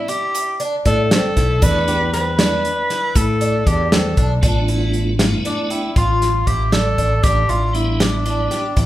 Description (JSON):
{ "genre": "progressive instrumental, band music in an uneven meter", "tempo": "235 BPM (eighths)", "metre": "11/8", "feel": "straight", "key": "unclear", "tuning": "A4 = 439 Hz", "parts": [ { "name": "warm tenor saxophone", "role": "melody", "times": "0.0-8.9 s", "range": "D4 to B4", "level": "-21 LUFS", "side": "left 1 dB", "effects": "none" }, { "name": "picked twelve-string acoustic guitar", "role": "arpeggios", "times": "0.1-8.9 s", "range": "C4 to G4", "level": "-24 LUFS", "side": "right 1 dB", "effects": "none" }, { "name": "warm soul drum kit", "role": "drums", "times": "0.1-8.9 s", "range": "hi-hat, kick drum, snare drum", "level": "-19 LUFS", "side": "equal", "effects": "none" }, { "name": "tube shaker", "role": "percussion", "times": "0.3-4.1 s", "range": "none", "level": "-35 LUFS", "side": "right 5 dB", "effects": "none" }, { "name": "mellow fretless electric bass", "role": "bass", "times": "0.9-8.9 s", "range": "A1 to A2", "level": "-20 LUFS", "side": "equal", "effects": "none" }, { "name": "tonewheel organ", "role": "accompaniment", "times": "1.6-8.6 s", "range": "G3 to F4", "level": "-25 LUFS", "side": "right 1 dB", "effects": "overdrive, chorus vibrato, slow rotary speaker" } ], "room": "moderate large studio reverb, RT60 1.3 s", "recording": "band playing live in one room", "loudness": "-15 LUFS", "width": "side -14 dB against mid", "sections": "0.0-4.4 A section; 4.4-8.9 B section", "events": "none", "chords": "0.0 A5; 4.4 G7/A (rootless); 7.2 Em7/A" }